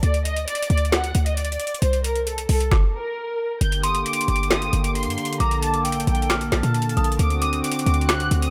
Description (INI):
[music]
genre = hip hop, trap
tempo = 134 BPM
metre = 4/4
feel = half-time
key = G minor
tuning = A4 = 440 Hz
[part]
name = rich studio violin section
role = melody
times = 0.0-8.5 s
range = A4 to G6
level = -29 LUFS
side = equal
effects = low-pass filter, delay
[part]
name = short 808-style bass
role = bass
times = 0.0-8.5 s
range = G1 to Bb2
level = -24 LUFS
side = equal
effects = none
[part]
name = trap drum kit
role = drums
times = 0.0-8.5 s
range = finger snaps, hi-hat, kick drum, snare drum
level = -27 LUFS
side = equal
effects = overdrive
[part]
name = warm analog pad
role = sustained chords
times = 3.6-8.5 s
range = D3 to A4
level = -29 LUFS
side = equal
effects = chorus
[part]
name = dark detuned synth bell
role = second line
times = 3.8-8.5 s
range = C6 to F6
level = -31 LUFS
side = equal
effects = chorus, tremolo, delay
[sound]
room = light reverb, digital ambience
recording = none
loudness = -22 LUFS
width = mono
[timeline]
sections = 0.0-3.6 A section; 3.6-8.5 B section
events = none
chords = 0.0 N.C.; 3.6 Gm; 5.4 Bbmaj7; 7.2 D7